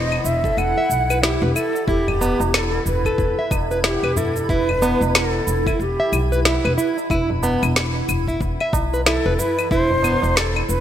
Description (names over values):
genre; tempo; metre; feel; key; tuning
organic downtempo; 92 BPM; 4/4; swing 60% on 16ths; E minor; A4 = 441 Hz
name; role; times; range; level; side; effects
breathy Native American-style cedar flute; melody; 0.0-10.8 s; G4 to F#5; -23 LUFS; equal; digital delay
granular cloud pad; sustained chords; 0.0-10.8 s; E4 to B5; -29 LUFS; equal; built-in reverb, analog chorus, sidechain pumping
upright bass; bass; 0.0-10.8 s; E1 to B1; -23 LUFS; equal; sidechain pumping
electronic claves, shaker and snare drum; drums; 0.1-10.8 s; none; -22 LUFS; left 1 dB; studio reverb
tabla; percussion; 0.1-10.7 s; none; -30 LUFS; right 3 dB; none
nylon-string guitar; arpeggios; 0.4-10.2 s; B3 to E5; -24 LUFS; right 1 dB; digital delay
electronic kick drum; drums; 0.4-9.9 s; none; -24 LUFS; equal; studio reverb
room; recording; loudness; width
moderate lush hall reverb, RT60 1.9 s, small room reverb; bright 1980s-style digital production; -17 LUFS; side -10 dB against mid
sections
0.0-10.8 A section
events
none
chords
0.0 Esus2